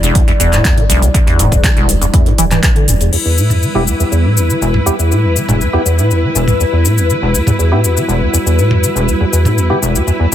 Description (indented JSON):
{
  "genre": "acid house",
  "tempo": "121 BPM",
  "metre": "4/4",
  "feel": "straight",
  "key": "E minor",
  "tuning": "A4 = 440 Hz",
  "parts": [
    { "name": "dark analog pad", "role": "sustained chords", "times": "0.0-10.3 s", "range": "G3 to D5", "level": "-21 LUFS", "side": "left 3 dB", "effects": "chorus, phaser, sidechain pumping" },
    { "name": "liquid acid bass", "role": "riff", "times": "0.0-10.3 s", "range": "E1 to E3", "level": "-13 LUFS", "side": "equal", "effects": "tube saturation, wide subtle chorus, cassette tape, digital delay" },
    { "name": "round analog bass", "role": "bass", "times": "0.0-3.1 s", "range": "E1 to B1", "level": "-15 LUFS", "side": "equal", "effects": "sidechain pumping" },
    { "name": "booming analog drum machine", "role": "drums", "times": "0.0-10.3 s", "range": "cabasa, crash cymbal, handclaps, hi-hat, toms", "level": "-17 LUFS", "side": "left 1 dB", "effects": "overdrive" },
    { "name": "electronic kick drum", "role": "drums", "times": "0.2-2.7 s", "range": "none", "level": "-13 LUFS", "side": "equal", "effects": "none" },
    { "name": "rich studio string section", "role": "texture", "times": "3.1-10.3 s", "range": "E4 to B4", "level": "-19 LUFS", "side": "left 1 dB", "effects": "sidechain pumping" },
    { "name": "percussive organ stab", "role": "stabs", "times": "3.8-9.8 s", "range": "B3 to G4", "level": "-21 LUFS", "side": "right 1 dB", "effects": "wide subtle chorus, digital delay" }
  ],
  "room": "little or no reverb",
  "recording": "dense, heavily limited modern master",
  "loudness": "-10 LUFS",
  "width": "side -11 dB against mid",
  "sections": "0.0-3.1 A section; 3.1-10.3 B section",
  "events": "filter sweep on acid bass 3.1-10.3",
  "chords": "0.0 Em",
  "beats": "0.15 0.65 | 1.14 1.64 2.13 2.63 | 3.13 3.62 4.12 4.62 | 5.11 5.61 6.10 6.60 | 7.09 7.59 8.09 8.58 | 9.08 9.57 10.07"
}